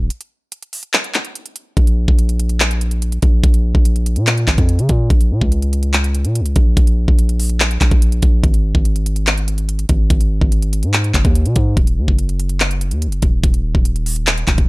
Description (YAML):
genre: hip hop, trap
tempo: 144 BPM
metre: 4/4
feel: half-time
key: Bb minor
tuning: A4 = 438 Hz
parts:
  - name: long sustained 808-style bass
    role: bass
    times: 0.0-14.7 s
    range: Eb1 to Db3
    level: -16 LUFS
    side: equal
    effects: none
  - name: trap drum kit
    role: drums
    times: 0.1-14.7 s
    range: handclaps, hi-hat, kick drum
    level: -15 LUFS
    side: equal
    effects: none
room: little or no reverb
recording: none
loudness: -13 LUFS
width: side -23 dB against mid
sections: 0.0-14.7 A section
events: break 0.1-1.8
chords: none